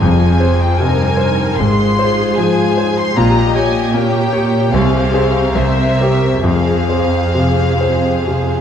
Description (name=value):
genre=classical, romantic movement for piano and orchestra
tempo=65-79 BPM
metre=4/4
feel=rubato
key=F minor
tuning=A4 = 440 Hz
part: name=clear grand piano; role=melody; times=0.0-8.6 s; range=C2 to Db5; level=-15 LUFS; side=left 2 dB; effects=none
part: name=warm symphonic violin section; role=melody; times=0.0-8.6 s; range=E5 to C6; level=-21 LUFS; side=left 3 dB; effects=none
part: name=warm symphonic violin section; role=second line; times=0.0-8.6 s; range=Eb4 to Eb5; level=-22 LUFS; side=left 3 dB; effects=none
part: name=warm symphonic viola section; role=accompaniment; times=0.0-8.6 s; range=G4 to C5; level=-22 LUFS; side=right 2 dB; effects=none
part: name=rich symphonic cello section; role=bass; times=0.0-8.6 s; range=F2 to C3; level=-20 LUFS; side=right 4 dB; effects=none
part: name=warm symphonic double bass section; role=bass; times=0.0-7.3 s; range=F1 to C2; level=-23 LUFS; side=right 4 dB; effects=none
room=wet concert hall reverb, RT60 1.8 s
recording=dark, warm production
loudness=-12 LUFS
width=side -8 dB against mid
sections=0.0-8.6 A section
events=none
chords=0.0 Fm; 1.6 Fm/Ab; 3.2 Gdim/Bb; 4.7 Fm/C; 5.6 C; 6.4 Fm